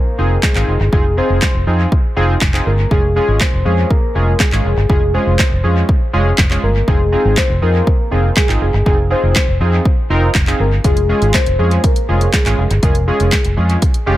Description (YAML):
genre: dance-pop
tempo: 121 BPM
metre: 4/4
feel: straight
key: F minor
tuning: A4 = 440 Hz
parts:
  - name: soft octave-layered synth lead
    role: melody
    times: 0.0-13.5 s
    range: Ab4 to C5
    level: -21 LUFS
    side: left 2 dB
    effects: chorus, tremolo, phaser, dub echo
  - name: warm analog keys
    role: accompaniment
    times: 0.2-14.2 s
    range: Ab3 to Bb4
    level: -20 LUFS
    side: right 1 dB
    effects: chorus, sidechain pumping
  - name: vintage muted fingered electric bass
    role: bass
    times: 0.2-14.2 s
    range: F1 to F2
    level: -15 LUFS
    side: equal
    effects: sidechain pumping
  - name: deep house drum kit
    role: drums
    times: 0.4-14.1 s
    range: handclaps, hi-hat, kick drum, snare drum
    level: -15 LUFS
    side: equal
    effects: dub echo
room: digital ambience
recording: echo-heavy mix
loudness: -12 LUFS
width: side -15 dB against mid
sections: 0.0-14.2 A section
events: none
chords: 0.0 Fm7; 2.9 Db/F; 6.9 Fm7; 10.8 Db/F